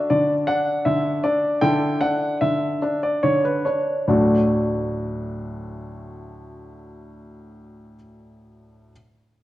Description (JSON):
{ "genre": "classical-period piano sonatina", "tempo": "68-80 BPM", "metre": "3/4", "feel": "rubato", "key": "D major", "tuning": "A4 = 441 Hz", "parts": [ { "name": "clear baby grand piano", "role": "solo", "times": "0.0-8.9 s", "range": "D2 to G5", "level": "-20 LUFS", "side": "equal", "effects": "none" } ], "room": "wet recital hall reverb, RT60 1.7 s", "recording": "worn, warbling old tape, cassette tape, warbly pitch drift", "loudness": "-19 LUFS", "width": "side -15 dB against mid", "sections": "0.0-4.1 A section; 4.1-6.7 B section", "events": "slowing down 0.0-4.1", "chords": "0.0 D; 1.6 A5/D; 4.1 D", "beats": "0.10 0.86 | 1.62 2.41 3.23 | 4.10 4.96 5.83" }